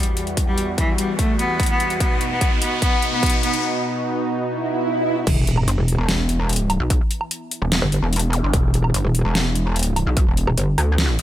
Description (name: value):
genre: heavy wobble dubstep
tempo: 147 BPM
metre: 4/4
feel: half-time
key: E minor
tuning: A4 = 440 Hz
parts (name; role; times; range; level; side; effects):
- bright cello; melody; 0.0-3.6 s; E3 to B3; -23 LUFS; left 1 dB; digital delay
- lush unison pad; sustained chords; 0.0-11.2 s; E2 to F#4; -27 LUFS; equal; chorus, sidechain pumping
- dubstep drum kit; drums; 0.0-11.2 s; crash cymbal, hi-hat, snare drum, woodblock; -24 LUFS; equal; overdrive
- riser, swell, sub drop and zap; sound effects; 0.5-8.4 s; none; -26 LUFS; right 1 dB; none
- electronic kick drum; drums; 0.4-10.2 s; none; -20 LUFS; equal; overdrive
- metallic wobble bass; bass; 5.3-10.8 s; E1 to G1; -19 LUFS; equal; chorus, overdrive
- pulsing pluck wobble bass; bass; 5.7-11.2 s; E1 to D2; -19 LUFS; equal; chorus, overdrive
room: light reverb, digital ambience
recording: none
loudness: -18 LUFS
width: side -13 dB against mid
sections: 0.0-5.3 A section; 5.3-11.2 B section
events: build-up 0.0-5.3; riser 0.5-3.6; drum fill 2.0-3.6; break 3.6-5.3; swell 4.6-5.3; drop 5.3-11.2; impact 5.3-6.9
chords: 0.0 Emadd9; 2.0 B; 5.3 E5